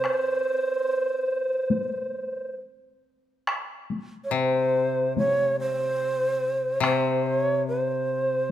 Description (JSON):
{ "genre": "japanese traditional, Japanese chamber music", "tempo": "66-76 BPM", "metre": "4/4", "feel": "rubato", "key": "unclear", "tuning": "A4 = 440 Hz", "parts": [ { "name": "breathy bright long shakuhachi", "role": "melody", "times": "0.0-8.5 s", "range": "C5 to Db5", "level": "-24 LUFS", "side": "right 1 dB", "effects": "none" }, { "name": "sitar", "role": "second line", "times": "0.0-2.5 s", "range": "C4", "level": "-55 LUFS", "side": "right 5 dB", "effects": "none" }, { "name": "koto", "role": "accompaniment", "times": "0.0-8.5 s", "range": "C3", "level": "-28 LUFS", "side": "left 6 dB", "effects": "none" }, { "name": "taiko ensemble", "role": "percussion", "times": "0.0-7.0 s", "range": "none", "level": "-29 LUFS", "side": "left 2 dB", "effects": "none" } ], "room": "moderate recital hall reverb, RT60 1.6 s", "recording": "minimal, uncompressed stereo recording", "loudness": "-23 LUFS", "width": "side -11 dB against mid", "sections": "0.0-3.5 A section; 3.5-8.5 B section", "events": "none", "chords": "none" }